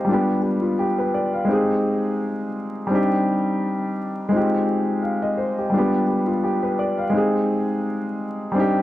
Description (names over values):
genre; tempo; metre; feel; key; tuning
hip hop; 85 BPM; 4/4; swing 55% on 16ths; unclear; A4 = 439 Hz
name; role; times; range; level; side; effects
dark baby grand piano; solo; 0.0-8.8 s; G3 to F5; -19 LUFS; equal; cassette tape
room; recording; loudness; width
moderate studio reverb, RT60 0.7 s; vinyl crackle; -19 LUFS; side -14 dB against mid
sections
0.0-8.6 A section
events
none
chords
0.1 G7; 1.5 Abmaj7; 2.9 Cmadd9; 4.3 Fm9; 5.7 G7; 7.1 Abmaj7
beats
| 0.09 0.79 1.50 2.21 | 2.91 3.62 4.32 5.03 | 5.74 6.44 7.15 7.85 | 8.56